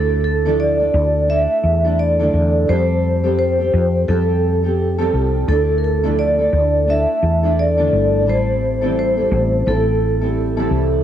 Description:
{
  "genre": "acoustic pop",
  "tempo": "86 BPM",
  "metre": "4/4",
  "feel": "swing 60% on 16ths",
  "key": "D minor",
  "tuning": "A4 = 439 Hz",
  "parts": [
    { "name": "vibraphone with medium mallets", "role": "melody", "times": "0.0-10.7 s", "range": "A4 to E5", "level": "-18 LUFS", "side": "equal", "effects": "cassette tape" },
    { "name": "fingerpicked steel-string acoustic guitar", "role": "accompaniment", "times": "0.0-11.0 s", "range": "A2 to A4", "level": "-21 LUFS", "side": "equal", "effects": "double-tracked left and right, cassette tape" },
    { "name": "woody fretless electric bass", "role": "bass", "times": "0.0-11.0 s", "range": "G1 to F2", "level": "-18 LUFS", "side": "equal", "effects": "ensemble chorus" }
  ],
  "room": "light reverb, small room ambience",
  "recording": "home recording on cassette",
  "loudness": "-14 LUFS",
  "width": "side -10 dB against mid",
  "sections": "0.0-11.0 A section",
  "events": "none",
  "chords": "0.0 Dmadd9; 2.7 Fadd9; 5.5 Dmadd9; 8.3 Am7",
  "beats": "0.59 1.29 1.99 | 2.69 3.38 4.08 4.78 | 5.48 6.18 6.88 7.57 | 8.27 8.97 9.66 10.36"
}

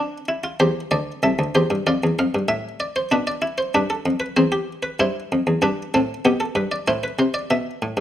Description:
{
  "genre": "classical, baroque-style 3-part fugue for harpsichord",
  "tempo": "96 BPM",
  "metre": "4/4",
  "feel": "straight",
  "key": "C major",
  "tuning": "A4 = 440 Hz",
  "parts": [
    { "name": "buff-stop harpsichord", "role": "solo", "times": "0.0-8.0 s", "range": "C2 to F5", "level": "-19 LUFS", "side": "equal", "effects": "none" }
  ],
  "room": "moderate stone room reverb, RT60 1.2 s",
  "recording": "close, detailed microphones",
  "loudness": "-19 LUFS",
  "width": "side -12 dB against mid",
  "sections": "0.6-8.0 A section",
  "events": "none",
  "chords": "0.0 G; 0.6 C; 1.9 Dm7; 3.1 G7/B; 4.4 C/E; 5.6 G; 6.9 Am",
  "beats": "| 0.61 1.24 1.86 2.49 | 3.12 3.74 4.37 5.00 | 5.63 6.25 6.88 7.51"
}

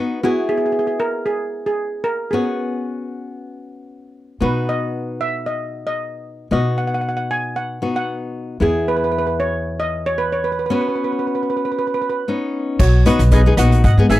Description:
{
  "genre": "calypso",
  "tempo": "115 BPM",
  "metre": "4/4",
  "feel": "swing 54% on 16ths",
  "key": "B major",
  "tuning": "A4 = 439 Hz",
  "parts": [
    { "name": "flamenco guitar", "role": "accompaniment", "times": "0.0-14.2 s", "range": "B3 to G#4", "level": "-22 LUFS", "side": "left 3 dB", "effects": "none" },
    { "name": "steel pan", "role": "melody", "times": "0.2-14.2 s", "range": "F#4 to G#5", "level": "-21 LUFS", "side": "right 2 dB", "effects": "none" },
    { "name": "upright bass", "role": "bass", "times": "4.4-14.2 s", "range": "G#1 to B2", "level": "-18 LUFS", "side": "equal", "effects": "none" },
    { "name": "street-band drum kit", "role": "drums", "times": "12.8-14.2 s", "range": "crash cymbal, hi-hat, kick drum, rim click", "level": "-19 LUFS", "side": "equal", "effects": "none" }
  ],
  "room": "light reverb",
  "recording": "dry, close 1970s-style studio recording",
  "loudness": "-17 LUFS",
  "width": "side -15 dB against mid",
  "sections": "0.0-12.8 A section; 12.8-14.2 B section",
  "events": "none",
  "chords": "0.2 E; 2.3 F#sus4; 4.4 B; 8.6 E; 10.7 F#sus4; 12.8 B",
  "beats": "| 0.24 0.77 1.29 1.81 | 2.33 2.85 3.38 3.90 | 4.42 4.94 5.47 5.99 | 6.51 7.04 7.56 8.08 | 8.61 9.13 9.65 10.18 | 10.70 11.22 11.75 12.27 | 12.79 13.31 13.84"
}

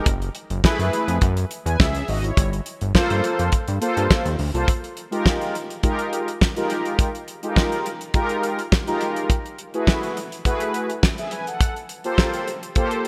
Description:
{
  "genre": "early-eighties boogie funk",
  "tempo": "104 BPM",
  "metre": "4/4",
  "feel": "straight",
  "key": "unclear",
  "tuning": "A4 = 441 Hz",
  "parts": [
    { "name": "mellow synth brass", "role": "accompaniment", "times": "0.0-13.1 s", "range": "Ab3 to Ab5", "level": "-27 LUFS", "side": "equal", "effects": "chorus" },
    { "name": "fat analog bass", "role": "bass", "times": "0.1-4.7 s", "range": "Gb1 to G2", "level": "-26 LUFS", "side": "equal", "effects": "none" },
    { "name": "damped 70s drum kit", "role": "drums", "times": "0.1-13.1 s", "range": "hi-hat, kick drum, snare drum", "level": "-23 LUFS", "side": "equal", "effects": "gated reverb" }
  ],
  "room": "light reverb, small room ambience",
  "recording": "bright 1980s-style digital production",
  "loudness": "-22 LUFS",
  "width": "mono",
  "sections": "0.0-4.7 A section; 4.7-13.1 B section",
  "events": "none",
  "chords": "0.1 Gbm11; 2.4 Gm11; 4.7 Fm11; 9.3 Gbm11; 11.6 Gm11",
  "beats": "| 0.07 0.64 1.22 1.80 | 2.37 2.95 3.53 4.10 | 4.68 5.26 5.83 6.41 | 6.99 7.57 8.14 8.72 | 9.30 9.87 10.45 11.03 | 11.60 12.18 12.76"
}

